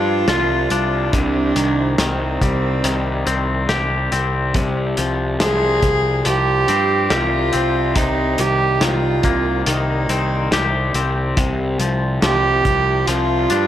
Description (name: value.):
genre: post-rock.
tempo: 70 BPM.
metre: 4/4.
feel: straight.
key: C minor.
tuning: A4 = 440 Hz.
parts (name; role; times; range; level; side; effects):
dark cello; melody; 0.0-13.7 s; C4 to Ab4; -19 LUFS; right 3 dB; slapback echo.
twangy electric guitar; arpeggios; 0.0-13.7 s; C3 to G4; -22 LUFS; left 5 dB; slapback echo.
fuzz picked electric bass; bass; 0.0-13.7 s; C2 to G2; -20 LUFS; equal; overdrive.
loose indie drum kit; drums; 0.3-13.7 s; hi-hat, kick drum, snare drum; -22 LUFS; equal; none.
room: light reverb, small room ambience.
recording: none.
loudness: -16 LUFS.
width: side -11 dB against mid.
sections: 0.0-13.7 A section.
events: none.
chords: 0.0 Csus24; 1.1 Cm; 4.6 Fmadd9/C; 8.0 Eb/C; 11.4 Csus4.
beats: 0.28 | 1.14 1.99 2.85 3.70 | 4.55 5.41 6.26 7.11 | 7.96 8.82 9.67 10.52 | 11.37 12.22 13.08.